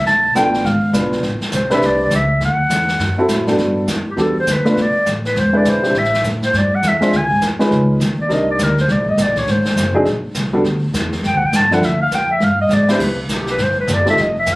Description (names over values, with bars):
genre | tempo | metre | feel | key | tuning
jazz, small-group swing and bop | 204 BPM | 4/4 | swing 62% on 8ths | G major | A4 = 442 Hz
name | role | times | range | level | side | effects
breathy clarinet | melody | 0.0-14.6 s | D4 to A5 | -17 LUFS | equal | none
upright bass | bass | 0.0-14.6 s | E1 to A2 | -20 LUFS | equal | none
jazz brush drum kit | drums | 0.1-14.6 s | brushed snare drum, crash cymbal, hi-hat, kick drum, snare drum | -23 LUFS | equal | none
dark baby grand piano | accompaniment | 0.4-14.2 s | G2 to C5 | -17 LUFS | equal | none
room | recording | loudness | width
light reverb | recorded on a phone in the room, club ambience | -14 LUFS | side -21 dB against mid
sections
0.0-3.6 A section; 3.6-13.0 B section; 13.0-14.6 B section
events
clarinet solo 3.6-14.6; drum fill 12.7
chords
0.1 Bm7b5; 0.6 G#dim7; 1.2 Am11; 2.4 D9; 3.6 Gmaj9; 4.8 Asus24; 5.4 E7b13; 5.9 Am7; 7.1 Dm7b5; 7.7 C#9; 8.3 Cm7; 9.5 Ab7#11; 10.6 G5; 11.8 Dm; 12.4 G; 13.0 C5